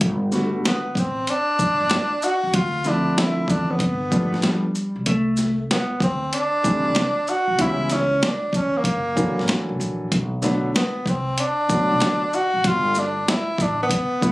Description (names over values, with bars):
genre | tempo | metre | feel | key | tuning
hip hop, jazz-hop | 95 BPM | 4/4 | swing 66% on 16ths | G major | A4 = 441 Hz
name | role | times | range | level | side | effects
upright bass | bass | 0.0-13.9 s | F#1 to E2 | -27 LUFS | equal | none
boom bap sampler-style drum kit | drums | 0.0-14.3 s | hi-hat, kick drum, shaker, snare drum | -23 LUFS | equal | none
warm concert grand piano | accompaniment | 0.3-14.3 s | D3 to A4 | -23 LUFS | equal | none
breathy tenor saxophone | melody | 0.7-14.3 s | Bb3 to F#4 | -22 LUFS | equal | none
mellow electric guitar | second line | 4.4-5.6 s | G3 to A3 | -21 LUFS | equal | none
room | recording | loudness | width
moderate studio ambience, RT60 0.5 s | recorded on a phone in the room, club reverb, compression | -19 LUFS | side -19 dB against mid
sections
0.0-14.3 A section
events
none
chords
0.0 Gmaj9; 2.5 Dm7; 3.8 G9; 5.1 Csus2; 7.6 C#m7b5; 8.9 F#7alt; 10.1 Bm7; 12.6 Gadd9